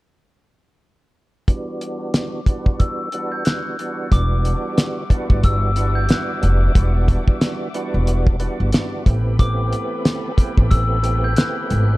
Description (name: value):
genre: hip hop, boom-bap hip-hop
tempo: 91 BPM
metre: 4/4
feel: swing 58% on 16ths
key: E minor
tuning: A4 = 443 Hz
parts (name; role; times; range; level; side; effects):
- glockenspiel with hard plastic mallets; melody; 1.5-11.7 s; D6 to G6; -27 LUFS; left 3 dB; high-pass filter, low-pass filter
- percussive tonewheel organ; accompaniment; 1.5-12.0 s; E3 to G4; -26 LUFS; right 2 dB; overdrive, chorus vibrato, slow rotary speaker, cassette tape, high-pass filter, low-pass filter
- cloth-damped thuddy drum kit; drums; 1.5-11.9 s; hi-hat, kick drum, snare drum; -17 LUFS; equal; none
- warm studio string section; sustained chords; 4.1-12.0 s; G3 to D6; -35 LUFS; left 2 dB; high-pass filter, low-pass filter
- upright bass; bass; 4.1-12.0 s; E1 to A1; -18 LUFS; equal; none
room: little or no reverb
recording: dark, warm production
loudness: -17 LUFS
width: side -19 dB against mid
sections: 1.5-4.1 A section; 4.1-12.0 B section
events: filter sweep 1.5-4.1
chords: 1.5 Em9; 9.1 Am9